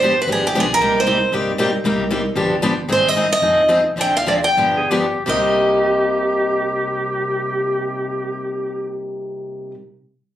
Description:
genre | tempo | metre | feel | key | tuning
acoustic string swing (jazz manouche) | 162-231 BPM | 4/4 | swing 56% on 8ths | C minor | A4 = 440 Hz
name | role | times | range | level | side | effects
picked steel-string acoustic guitar | melody | 0.0-9.7 s | G4 to G5 | -17 LUFS | right 1 dB | none
picked steel-string acoustic guitar | accompaniment | 0.0-9.7 s | C3 to Ab4 | -20 LUFS | left 2 dB | none
upright bass | bass | 0.0-9.7 s | F1 to D2 | -33 LUFS | right 1 dB | none
warm clarinet | second line | 4.8-9.0 s | G4 to Ab4 | -22 LUFS | right 1 dB | none
room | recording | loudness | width
moderate studio ambience, RT60 0.5 s | recorded on a phone in the room, club reverb, compression | -16 LUFS | side -12 dB against mid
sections
0.0-2.9 A section; 2.9-5.3 B section; 5.3-8.2 C section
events
slowing down 2.9-5.3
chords
0.0 G7b9; 0.8 Cm7; 2.4 G7; 2.9 Abmaj7; 3.4 Fm7; 4.0 Dm7b5; 4.6 G7; 5.3 Cm7

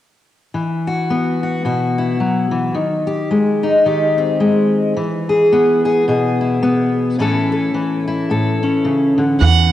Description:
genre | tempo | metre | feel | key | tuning
folk | 108 BPM | 4/4 | swing 59% on 8ths | unclear | A4 = 440 Hz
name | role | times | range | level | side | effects
fingerpicked steel-string acoustic guitar | accompaniment | 0.5-9.7 s | A2 to A4 | -14 LUFS | left 1 dB | none
warm fiddle | melody | 9.4-9.7 s | F#5 | -14 LUFS | right 9 dB | cassette tape
upright bass | bass | 9.4-9.7 s | E2 | -11 LUFS | right 2 dB | none
room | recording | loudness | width
wet lush hall reverb, RT60 2.6 s | home recording on cassette | -14 LUFS | side -12 dB against mid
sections
0.5-9.4 A section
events
none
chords
0.5 Esus2; 2.8 G#/D#; 5.0 E; 7.2 A

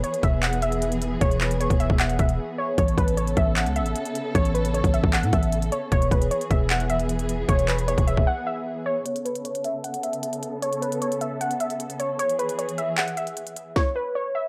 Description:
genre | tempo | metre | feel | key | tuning
hip hop, trap | 153 BPM | 4/4 | half-time | A major | A4 = 440 Hz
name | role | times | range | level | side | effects
warbly dusty pluck | melody | 0.0-14.5 s | B4 to F#5 | -29 LUFS | equal | chorus, low-pass filter, tape echo
dark symphonic string section | sustained chords | 0.0-13.7 s | C#3 to A4 | -33 LUFS | equal | low-pass filter
growling 808-style bass | bass | 0.0-8.3 s | E1 to A2 | -27 LUFS | equal | none
trap drum kit | drums | 0.0-13.9 s | handclaps, hi-hat, kick drum, snare drum | -27 LUFS | equal | none
room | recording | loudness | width
little or no reverb | dry, gritty hardware recording | -24 LUFS | mono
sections
0.0-9.1 A section; 9.1-14.5 B section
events
break 2.4-2.8, 8.3-9.1; filter sweep 9.1-14.5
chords
0.0 E; 2.8 Aadd9; 5.9 E; 9.1 Aadd9; 12.2 E

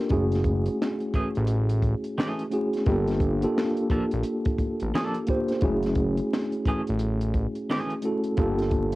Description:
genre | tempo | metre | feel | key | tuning
R&B, neo-soul | 87 BPM | 4/4 | swing 63% on 16ths | F# minor | A4 = 437 Hz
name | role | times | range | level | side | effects
mellow tine electric piano | accompaniment | 0.0-9.0 s | G#3 to B#4 | -26 LUFS | equal | medium stereo tremolo, cassette tape
compact cocktail drum kit | drums | 0.0-9.0 s | handclaps, hi-hat, kick drum, snare drum | -28 LUFS | equal | cassette tape
fat analog bass | bass | 0.1-9.0 s | F#1 to Bb1 | -26 LUFS | equal | transformer saturation
clean electric guitar | second line | 1.1-7.9 s | E3 to A4 | -29 LUFS | right 1 dB | tremolo, cassette tape
room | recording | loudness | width
light reverb | home recording on cassette, vinyl crackle | -23 LUFS | side -19 dB against mid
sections
0.1-9.0 A section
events
none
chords
0.1 F#m9; 2.9 Gm9; 5.6 F#m9; 8.4 Gm9

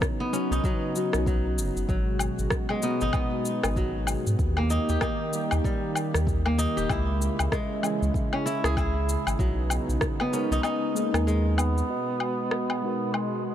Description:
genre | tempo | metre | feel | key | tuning
organic downtempo | 96 BPM | 4/4 | swing 60% on 16ths | G# minor | A4 = 442 Hz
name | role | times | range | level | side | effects
warm analog pad | sustained chords | 0.0-13.5 s | B2 to G4 | -32 LUFS | right 1 dB | chorus, sidechain pumping
kora | arpeggios | 0.0-12.3 s | F#3 to G#4 | -30 LUFS | equal | digital delay
electronic kick drum | drums | 0.0-10.2 s | none | -29 LUFS | equal | none
electronic rim click, shaker and woodblock | drums | 0.0-13.3 s | none | -32 LUFS | left 2 dB | none
bronze singing bowl | texture | 0.0-13.5 s | C#4 to D#5 | -45 LUFS | right 2 dB | none
deep mellow chord stab | accompaniment | 0.3-13.5 s | B2 to A#4 | -34 LUFS | left 2 dB | chorus, sidechain pumping, digital delay
warm sub bass | bass | 0.5-11.8 s | D#1 to G#2 | -27 LUFS | equal | sidechain pumping
warm duduk | melody | 11.6-13.5 s | G#3 to B3 | -29 LUFS | right 2 dB | ping-pong delay
room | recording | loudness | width
light reverb | dark, warm production | -24 LUFS | side -10 dB against mid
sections
0.0-11.9 A section; 11.9-13.5 B section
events
kick drops out 10.6-11.9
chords
0.0 Badd9; 1.9 G#m7; 4.4 D#; 6.9 C#m; 9.4 Badd9; 10.6 D#sus4; 11.9 G#m7

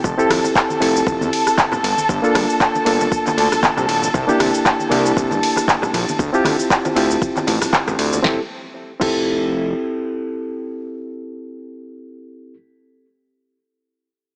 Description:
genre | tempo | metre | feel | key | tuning
nu-disco, nu disco | 117 BPM | 4/4 | swing 55% on 16ths | F major | A4 = 441 Hz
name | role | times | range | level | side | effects
bright reed electric piano | accompaniment | 0.0-12.6 s | Bb3 to A4 | -23 LUFS | equal | tape echo
muted chamber string section | sustained chords | 0.0-8.3 s | A4 to A5 | -25 LUFS | equal | sidechain pumping
fat analog bass | bass | 0.0-9.7 s | D1 to F2 | -25 LUFS | equal | none
electronic kick drum | drums | 0.0-9.2 s | none | -24 LUFS | equal | none
house drum kit | drums | 0.0-9.2 s | crash cymbal, handclaps, hi-hat, ride cymbal, rim click, shaker, snare drum | -23 LUFS | equal | none
congas | percussion | 0.2-8.2 s | none | -32 LUFS | equal | none
room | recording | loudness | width
light reverb, digital ambience | small speaker sound | -18 LUFS | mono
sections
0.0-8.2 A section; 8.2-12.3 B section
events
drop 0.0-8.2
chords
0.0 Fmaj9; 1.8 Gm9; 4.1 C9; 6.2 Dm11; 8.2 Fmaj9

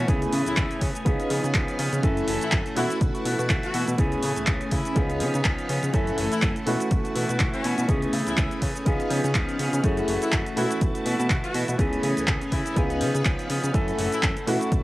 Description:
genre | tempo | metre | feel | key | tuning
filtered disco house | 123 BPM | 4/4 | swing 56% on 16ths | F# dorian | A4 = 440 Hz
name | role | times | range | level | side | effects
brilliant horn section | melody | 0.0-14.3 s | C#4 to F#4 | -33 LUFS | left 1 dB | sidechain pumping, cassette tape
warm concert grand piano | accompaniment | 0.0-14.8 s | A3 to G#5 | -29 LUFS | equal | phaser, sidechain pumping
string machine, full ensemble | sustained chords | 0.0-14.8 s | A3 to A5 | -33 LUFS | equal | phaser, ensemble chorus, vintage 12-bit sampler grit, sidechain pumping
electric guitar with an envelope filter | riff | 0.0-14.8 s | E3 to A4 | -31 LUFS | right 1 dB | sidechain pumping
fat analog bass | bass | 0.0-14.8 s | F#1 to C#3 | -28 LUFS | equal | sidechain pumping
electronic kick drum | drums | 0.1-14.8 s | none | -25 LUFS | equal | overdrive, cassette tape
punchy analog drum machine | drums | 0.1-14.8 s | handclaps, hi-hat, shaker | -30 LUFS | equal | overdrive, sidechain pumping on hats, cassette tape, sidechain pumping on perc
room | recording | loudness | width
light reverb | home recording on cassette | -22 LUFS | side -18 dB against mid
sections
0.0-14.8 A section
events
none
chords
0.1 Amaj7/C#; 1.1 C#7; 2.0 F#m7; 2.8 B7sus4; 4.0 Amaj7/C#; 5.0 C#7; 5.9 F#m7; 6.7 B7sus4; 7.9 Amaj7/C#; 8.9 C#7; 9.8 F#m7; 10.6 B7sus4; 11.8 Amaj7/C#; 12.8 C#7; 13.7 F#m7

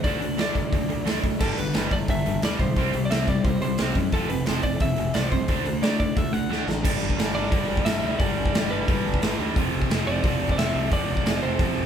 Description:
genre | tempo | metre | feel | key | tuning
punk rock | 177 BPM | 4/4 | straight | unclear | A4 = 439 Hz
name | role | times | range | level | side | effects
lightly driven lead guitar | melody | 0.0-11.9 s | A4 to F#5 | -30 LUFS | equal | none
biting overdriven guitar | riff | 0.0-11.9 s | F2 to D4 | -30 LUFS | left 6 dB | none
distorted electric guitar | riff | 0.0-11.9 s | F2 to D4 | -30 LUFS | right 8 dB | distortion
fuzz guitar | riff | 0.0-6.8 s | G2 to F#4 | -33 LUFS | left 1 dB | distortion
growling picked electric bass | bass | 0.0-11.9 s | F1 to F#2 | -30 LUFS | equal | overdrive
big rock drum kit | drums | 0.0-11.7 s | crash cymbal, hi-hat, kick drum, snare drum | -25 LUFS | equal | none
room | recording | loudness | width
light reverb | band playing live in one room | -21 LUFS | side -8 dB against mid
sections
0.0-6.8 A section; 6.8-11.9 B section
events
drum fill 6.5-6.8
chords
0.0 D; 1.4 G; 2.8 C; 4.1 F; 5.5 D; 6.8 G; 9.6 F5

